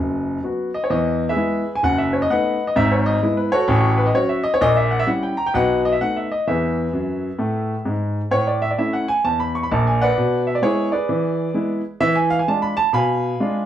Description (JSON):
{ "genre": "jazz, stride piano", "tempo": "130 BPM", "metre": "4/4", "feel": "swing 65% on 8ths", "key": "E major, A major from 8.3 s", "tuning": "A4 = 439 Hz", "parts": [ { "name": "warm grand piano", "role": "solo", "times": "0.0-13.7 s", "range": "F#1 to C#6", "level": "-17 LUFS", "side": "equal", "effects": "none" } ], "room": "wet studio reverb, RT60 0.5 s", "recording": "heard from further back in the room, faint mains hum", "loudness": "-17 LUFS", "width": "side -11 dB against mid", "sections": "0.0-8.3 A section; 8.3-13.7 B section", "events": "grand piano fill 6.9-8.3", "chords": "0.0 B; 0.9 E; 1.8 B7/F#; 2.8 E/G#; 3.7 F#m/A; 4.6 A#dim7; 5.5 B7; 6.5 E; 8.3 A; 10.2 E7/B; 12.0 E7b9", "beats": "0.44 | 0.90 1.36 1.83 2.29 | 2.75 3.22 3.68 4.14 | 4.61 5.07 5.54 6.00 | 6.46 6.92 7.39 7.85 | 8.31 8.78 9.24 9.70 | 10.16 10.62 11.09 11.55 | 12.01 12.47 12.94 13.40" }